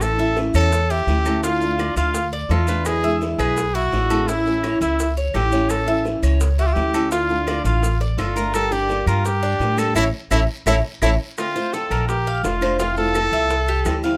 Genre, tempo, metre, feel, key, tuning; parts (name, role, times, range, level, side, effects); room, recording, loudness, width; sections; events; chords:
latin, Cuban son and guajira; 169 BPM; 4/4; straight; A4 = 440 Hz
bright trumpet; melody; 0.0-14.0 s; E4 to A4; -25 LUFS; equal
picked steel-string acoustic guitar; accompaniment; 0.0-14.2 s; B2 to G4; -27 LUFS; equal
upright bass; bass; 0.0-14.2 s; F1 to A2; -24 LUFS; equal
bongos; percussion; 0.0-14.0 s; -34 LUFS; equal
claves; percussion; 0.0-14.0 s; -38 LUFS; equal
guiro; percussion; 0.0-14.2 s; -43 LUFS; equal
maracas; percussion; 0.0-14.2 s; -39 LUFS; equal
Cuban tres; arpeggios; 0.2-14.2 s; D4 to F5; -28 LUFS; equal
light reverb; -20 LUFS; mono
0.0-11.4 A section; 11.4-14.2 B section
band accent 10.0-11.4; drum fill 10.7-11.4
0.0 A; 1.4 Dm; 2.9 E7; 4.3 A; 7.1 Dm; 8.5 Gm; 10.0 A; 11.4 Dm7; 12.1 Bbmaj7; 12.8 Fmaj7; 13.5 C